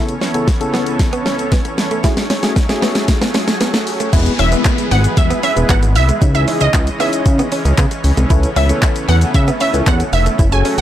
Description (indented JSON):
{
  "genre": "dance-pop",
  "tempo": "115 BPM",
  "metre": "4/4",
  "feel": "straight",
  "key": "unclear",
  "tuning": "A4 = 439 Hz",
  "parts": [
    { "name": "tine electric piano", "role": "accompaniment", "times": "0.0-10.8 s", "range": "C#3 to E5", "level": "-21 LUFS", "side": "left 3 dB", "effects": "medium stereo tremolo, sidechain pumping" },
    { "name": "supersaw pad", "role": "sustained chords", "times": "0.0-10.8 s", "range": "C#2 to D#5", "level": "-23 LUFS", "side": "equal", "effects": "sidechain pumping" },
    { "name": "direct-recorded clean electric guitar", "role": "riff", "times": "0.0-10.8 s", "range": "G#3 to E4", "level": "-22 LUFS", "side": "right 5 dB", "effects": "lush chorus" },
    { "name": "riser and downlifter", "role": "sound effects", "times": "0.1-8.3 s", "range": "none", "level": "-26 LUFS", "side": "left 1 dB", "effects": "none" },
    { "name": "smooth R&B drum kit", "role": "drums", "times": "0.1-10.8 s", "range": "crash cymbal, handclaps, hi-hat, kick drum, shaker, snare drum", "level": "-16 LUFS", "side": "equal", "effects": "none" },
    { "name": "tube shaker", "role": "percussion", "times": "0.1-10.8 s", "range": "none", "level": "-36 LUFS", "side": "left 8 dB", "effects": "none" },
    { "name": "chorused synth bass", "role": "bass", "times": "4.1-10.8 s", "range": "E1 to C#3", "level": "-14 LUFS", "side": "equal", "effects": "sidechain pumping" },
    { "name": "wide unison pluck", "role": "melody", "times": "4.4-10.8 s", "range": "D#5 to G#5", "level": "-19 LUFS", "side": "moving between left 6 dB and right 7 dB", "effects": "auto-pan, sidechain pumping, dub echo" }
  ],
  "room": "light reverb",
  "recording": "blown-out, overdriven recording, overdrive",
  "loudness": "-12 LUFS",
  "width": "side -12 dB against mid",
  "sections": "0.0-4.1 A section; 4.1-10.8 B section",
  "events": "build-up 0.0-4.1; drum fill 0.0-4.1; drop 4.1-10.8",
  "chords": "0.0 Aadd9/C#; 2.0 F#madd9; 4.1 E; 6.2 C#madd9; 8.3 Aadd9/C#"
}